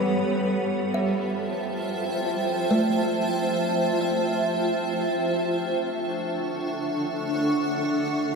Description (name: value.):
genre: ambient.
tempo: free time.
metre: none.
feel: none.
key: unclear.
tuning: A4 = 440 Hz.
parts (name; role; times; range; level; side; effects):
granular cloud pad; sustained chords; 0.0-8.4 s; D4 to C#6; -24 LUFS; equal; built-in reverb.
kalimba; arpeggios; 0.9-6.8 s; A3 to E5; -30 LUFS; right 1 dB; tape echo.
room: wet huge ambient reverb, RT60 7.9 s.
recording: dreamy mix soaked in reverb.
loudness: -23 LUFS.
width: side -4 dB against mid.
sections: 0.0-8.4 A section.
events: none.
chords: 0.1 Fmaj7; 5.3 Dmaj9.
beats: free time.